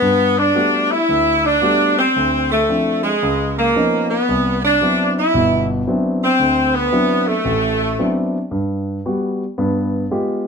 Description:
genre	jazz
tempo	113 BPM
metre	4/4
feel	swing 68% on 8ths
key	G major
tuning	A4 = 440 Hz
part	warm saxophone section	melody	0.0-8.3 s	Ab3 to E4	-15 LUFS	equal	none
part	warm concert grand piano	accompaniment	0.0-10.5 s	G1 to G4	-20 LUFS	equal	none
room	wet club reverb, RT60 0.7 s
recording	none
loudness	-15 LUFS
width	side -5 dB against mid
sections	0.0-10.5 A section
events	none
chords	0.0 Gmaj9; 2.1 Dm9; 3.2 C#9; 4.3 Cmaj9#11; 6.4 D13; 8.5 Gmaj7; 9.6 G7b9

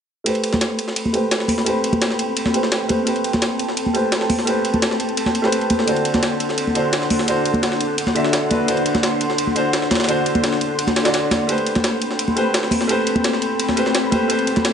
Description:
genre	liquid drum and bass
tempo	171 BPM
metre	4/4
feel	straight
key	A dorian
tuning	A4 = 440 Hz
part	bright grand piano	accompaniment	0.2-14.7 s	D3 to E5	-21 LUFS	right 1 dB	low-pass filter, ping-pong delay
part	ethereal airy pad	sustained chords	0.7-14.7 s	C4 to C6	-24 LUFS	left 2 dB	ensemble chorus, built-in reverb, vintage 12-bit sampler grit
part	electronic hi-hat	drums	0.3-14.7 s	none	-27 LUFS	left 4 dB	overdrive
part	jungle sampler-style drum kit	drums	0.3-14.7 s	hi-hat, ride cymbal, snare drum	-24 LUFS	right 1 dB	overdrive, high-pass filter on cymbals, high-pass filter on snare, high-pass filter on hats
part	congas	percussion	0.5-14.6 s	none	-23 LUFS	equal	none
room	light reverb, digital ambience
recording	nothing above 10.4 kHz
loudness	-17 LUFS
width	side -7 dB against mid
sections	0.3-14.7 A section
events	filter sweep on grand piano 0.3-14.7; filter sweep on ambient pad 0.3-14.7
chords	0.3 Am9; 5.9 D7; 11.5 Am9

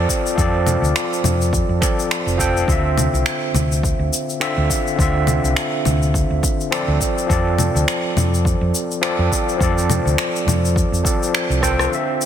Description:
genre	sunset chillout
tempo	104 BPM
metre	4/4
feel	swing 57% on 16ths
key	F major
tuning	A4 = 439 Hz
part	overdriven tine electric piano	accompaniment	0.0-12.3 s	D3 to G5	-20 LUFS	equal	auto-pan, low-pass filter, ping-pong delay
part	hollow-body short-scale fingered electric bass	bass	0.0-11.9 s	F1 to F2	-19 LUFS	equal	none
part	electronic kick drum	drums	0.1-11.8 s	none	-21 LUFS	equal	none
part	electronic shaker, congas, finger snaps and rim click	drums	0.1-12.3 s	none	-23 LUFS	left 2 dB	soft clipping on snare
room	light reverb, digital ambience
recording	dense, heavily limited modern master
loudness	-16 LUFS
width	side -9 dB against mid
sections	0.0-11.9 A section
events	drum fill 11.6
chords	0.0 F6; 2.7 Dm9; 7.0 F6

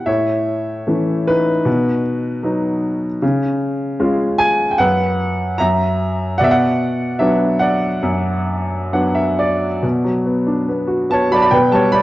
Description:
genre	classical, lyrical solo piano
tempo	64-77 BPM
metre	4/4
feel	rubato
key	B minor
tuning	A4 = 440 Hz
part	warm grand piano	solo	0.0-12.0 s	F#2 to B5	-15 LUFS	equal	none
room	moderate recital hall reverb, RT60 1.8 s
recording	worn, warbling old tape, cassette tape, warbly pitch drift, nothing above 8.0 kHz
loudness	-15 LUFS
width	side -16 dB against mid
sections	0.0-9.8 A section; 9.8-12.0 B section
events	grand piano fill 8.5-9.8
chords	0.1 A; 1.7 B; 3.2 C#; 4.8 F#sus4; 5.6 F#7; 6.4 Bm

